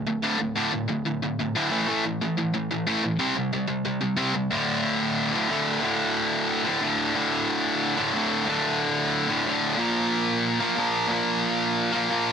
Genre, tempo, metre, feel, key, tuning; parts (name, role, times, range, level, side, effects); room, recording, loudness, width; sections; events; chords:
punk; 182 BPM; 4/4; straight; D minor; A4 = 440 Hz
distorted electric guitar; solo; 0.0-12.3 s; D2 to C4; -22 LUFS; equal; overdrive
light reverb; dense, heavily limited modern master; -22 LUFS; side -7 dB against mid
0.0-4.5 A section; 4.5-12.3 B section
0.0 D5; 1.7 A5; 3.2 C5; 4.5 D5; 9.8 Bb5